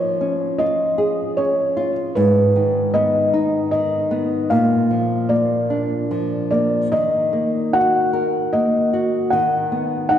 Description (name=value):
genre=children's music, lullaby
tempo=76 BPM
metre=3/4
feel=rubato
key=Eb minor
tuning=A4 = 439 Hz
part: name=felt-muted upright piano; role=melody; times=0.0-10.2 s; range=Cb5 to Gb5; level=-19 LUFS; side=equal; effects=none
part: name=flamenco guitar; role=accompaniment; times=0.0-10.2 s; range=Ab2 to Bb4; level=-20 LUFS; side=equal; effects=none
room=wet church reverb, RT60 3.4 s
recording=recorded in a church or concert hall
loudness=-16 LUFS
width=side -10 dB against mid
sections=0.0-10.2 A section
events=none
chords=0.0 Db/F; 2.2 Abm; 4.5 Bb; 6.9 Ebm; 9.3 B/D#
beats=0.59 1.38 | 2.16 2.94 3.72 | 4.50 5.29 6.10 | 6.92 7.72 8.53 | 9.32 10.11